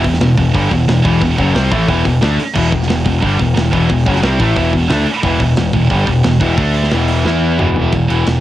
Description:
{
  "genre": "heavy metal",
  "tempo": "179 BPM",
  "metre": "4/4",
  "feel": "straight",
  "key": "E minor",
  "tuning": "A4 = 440 Hz",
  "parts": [
    { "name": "fuzz guitar", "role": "riff", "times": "0.0-7.9 s", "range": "E2 to E4", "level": "-20 LUFS", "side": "left 1 dB", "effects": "distortion" },
    { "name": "heavy high-gain guitar", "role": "riff", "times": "0.0-8.4 s", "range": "E2 to E4", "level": "-18 LUFS", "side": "right 4 dB", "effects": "distortion" },
    { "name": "sludgy distorted guitar", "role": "riff", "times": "0.0-8.4 s", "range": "E2 to E4", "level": "-19 LUFS", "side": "left 6 dB", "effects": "overdrive" },
    { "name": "growling picked electric bass", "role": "bass", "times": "0.0-8.4 s", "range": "E1 to E2", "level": "-16 LUFS", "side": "equal", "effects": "overdrive" },
    { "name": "tight metal drum kit", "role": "drums", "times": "0.0-8.3 s", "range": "crash cymbal, hi-hat, kick drum, ride cymbal, snare drum, toms", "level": "-20 LUFS", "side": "equal", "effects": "none" }
  ],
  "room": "little or no reverb",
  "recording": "home recording on cassette",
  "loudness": "-11 LUFS",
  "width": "side -14 dB against mid",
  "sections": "0.0-7.9 A section",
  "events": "drum fill 7.3-7.9",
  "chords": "0.0 Em; 6.6 D5; 6.9 E5"
}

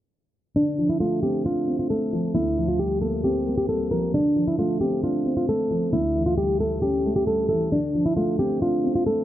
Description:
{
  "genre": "hip hop",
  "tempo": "134 BPM",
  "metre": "4/4",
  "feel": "half-time",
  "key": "D minor",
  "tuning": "A4 = 440 Hz",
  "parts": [
    { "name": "nylon-string guitar", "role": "melody", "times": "0.6-9.2 s", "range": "D4 to Bb4", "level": "-23 LUFS", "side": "equal", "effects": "low-pass filter" },
    { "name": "dark concert grand piano", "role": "accompaniment", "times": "0.6-9.2 s", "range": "D2 to D4", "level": "-24 LUFS", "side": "equal", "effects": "low-pass filter" }
  ],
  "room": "light reverb, studio reverb",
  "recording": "dark, warm production, low-pass filter, nothing above 10.3 kHz",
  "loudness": "-21 LUFS",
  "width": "side -12 dB against mid",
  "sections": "0.6-9.2 A section",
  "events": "filter sweep 0.6-9.2",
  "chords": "0.6 Dm7; 2.3 C7sus4/D; 4.1 Dm7; 5.9 A7/D; 7.7 Dm7"
}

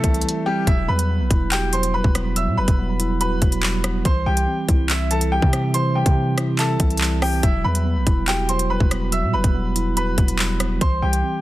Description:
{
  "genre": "hip hop, drill",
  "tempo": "142 BPM",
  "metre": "4/4",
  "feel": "half-time",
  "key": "E minor",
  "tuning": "A4 = 440 Hz",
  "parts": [
    { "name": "bright upright piano", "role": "melody", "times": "0.0-11.4 s", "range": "G3 to E6", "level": "-24 LUFS", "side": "equal", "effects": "tape echo" },
    { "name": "mellow tine electric piano", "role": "accompaniment", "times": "0.0-11.4 s", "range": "E3 to E5", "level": "-25 LUFS", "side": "right 1 dB", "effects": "medium stereo tremolo" },
    { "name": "hard-hitting 808-style bass", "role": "bass", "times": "0.0-11.2 s", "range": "D#1 to C3", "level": "-22 LUFS", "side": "equal", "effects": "none" },
    { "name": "drill drum kit", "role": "drums", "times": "0.0-11.2 s", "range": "handclaps, hi-hat, kick drum, rim click", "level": "-20 LUFS", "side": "equal", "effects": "none" }
  ],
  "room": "digital ambience",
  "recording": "dense, heavily limited modern master",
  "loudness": "-17 LUFS",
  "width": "side -16 dB against mid",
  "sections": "0.7-11.4 A section",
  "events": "break 0.2-0.7",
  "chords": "0.0 C; 0.7 Emadd9; 4.1 C; 7.4 Emadd9; 10.8 C"
}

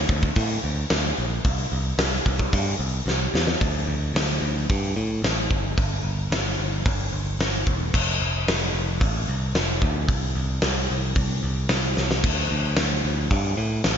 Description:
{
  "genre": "hard rock",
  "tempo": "111 BPM",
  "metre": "4/4",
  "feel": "straight",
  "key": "D minor from 3.6 s",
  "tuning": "A4 = 440 Hz",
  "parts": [
    { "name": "modern bright picked electric bass", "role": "bass", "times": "0.0-14.0 s", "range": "E1 to A2", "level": "-25 LUFS", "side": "equal", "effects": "none" },
    { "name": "big rock drum kit", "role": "drums", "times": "0.1-14.0 s", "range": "crash cymbal, hi-hat, kick drum, snare drum", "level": "-23 LUFS", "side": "equal", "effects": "none" }
  ],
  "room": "little or no reverb",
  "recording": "nothing above 7.5 kHz",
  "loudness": "-21 LUFS",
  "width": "side -8 dB against mid",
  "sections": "0.0-3.6 A section; 3.6-14.0 B section",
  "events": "drum fill 3.1-3.6, 12.0",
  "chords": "none"
}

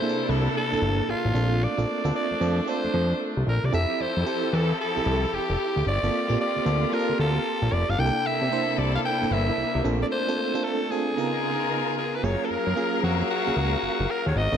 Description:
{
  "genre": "R&B",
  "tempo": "113 BPM",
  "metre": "4/4",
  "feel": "swing 64% on 16ths",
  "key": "unclear",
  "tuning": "A4 = 441 Hz",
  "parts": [
    { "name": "raspy alto saxophone", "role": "melody", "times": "0.0-14.6 s", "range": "F4 to G5", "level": "-27 LUFS", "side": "left 1 dB", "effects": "analog delay" },
    { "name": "FM electric piano with tremolo", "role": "accompaniment", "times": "0.0-14.6 s", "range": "Db3 to E#5", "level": "-29 LUFS", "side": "right 5 dB", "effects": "none" },
    { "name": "warm studio string section", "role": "sustained chords", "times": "0.0-14.6 s", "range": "C3 to E#5", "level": "-30 LUFS", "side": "left 2 dB", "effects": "none" },
    { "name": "fat analog bass", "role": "bass", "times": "0.3-14.6 s", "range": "F1 to C3", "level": "-25 LUFS", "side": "equal", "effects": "none" }
  ],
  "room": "moderate plate reverb, RT60 2.4 s",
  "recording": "dreamy mix soaked in reverb",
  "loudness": "-22 LUFS",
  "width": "side -8 dB against mid",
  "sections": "0.0-12.2 A section; 12.2-14.6 A section",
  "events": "break 10.1-12.2",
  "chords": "0.0 C13; 1.3 Bbmaj9; 3.7 Fmaj9; 5.9 Gm11; 8.0 C13; 9.8 Bbmaj9; 11.2 Db13; 12.2 F#maj9"
}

